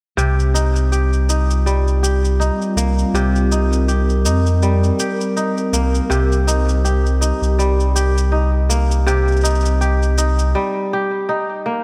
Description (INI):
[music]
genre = folktronica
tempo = 81 BPM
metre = 4/4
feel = swing 56% on 16ths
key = C minor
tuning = A4 = 440 Hz
[part]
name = warbly tape-like pad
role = sustained chords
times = 1.3-10.6 s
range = G3 to Bb4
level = -26 LUFS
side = equal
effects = chorus, built-in reverb, vintage 12-bit sampler grit
[part]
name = kora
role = arpeggios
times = 0.2-11.8 s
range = C3 to G4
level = -23 LUFS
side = equal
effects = low-pass filter, delay
[part]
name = warm sub bass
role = bass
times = 0.2-10.5 s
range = C2 to F2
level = -18 LUFS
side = equal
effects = none
[part]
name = cabasa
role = drums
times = 0.2-10.5 s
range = none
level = -30 LUFS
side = equal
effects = small room ambience
[sound]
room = light reverb, digital ambience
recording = none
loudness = -17 LUFS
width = mono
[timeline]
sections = 0.2-11.8 A section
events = filter sweep on sub bass 0.2-11.8; filter sweep on ambient pad 0.2-11.8; break 10.5-11.8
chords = 0.2 Cm7